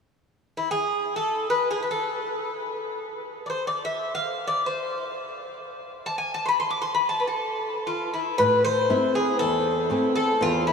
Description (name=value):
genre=greek folk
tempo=free time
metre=none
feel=none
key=A harmonic minor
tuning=A4 = 437 Hz
part: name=Greek bouzouki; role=melody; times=0.6-10.7 s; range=E4 to D6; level=-24 LUFS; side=left 1 dB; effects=none
part: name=flamenco guitar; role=accompaniment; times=8.4-10.7 s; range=E2 to E4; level=-25 LUFS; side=equal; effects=lush chorus
room=wet huge ambient reverb, RT60 8.0 s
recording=dreamy mix soaked in reverb, small room ambience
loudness=-23 LUFS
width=side -6 dB against mid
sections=0.3-8.4 A section; 8.4-10.7 B section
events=none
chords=0.3 N.C.; 8.4 Am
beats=free time